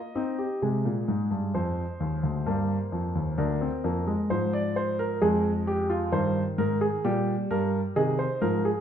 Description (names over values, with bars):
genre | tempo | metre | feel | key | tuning
classical, baroque-style 4-part fugue for grand piano | 65 BPM | 4/4 | straight | unclear | A4 = 440 Hz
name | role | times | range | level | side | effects
warm grand piano | solo | 0.0-8.8 s | D2 to Eb5 | -24 LUFS | equal | none
room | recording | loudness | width
wet recital hall reverb, RT60 1.2 s | none | -24 LUFS | side -9 dB against mid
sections
0.6-8.8 A section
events
none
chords
0.0 Eb; 0.6 Ab; 4.3 Fm/Ab; 6.1 Eb/G; 8.0 Ab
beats
| 0.61 1.54 2.46 3.38 | 4.29 5.21 6.13 7.05 | 7.96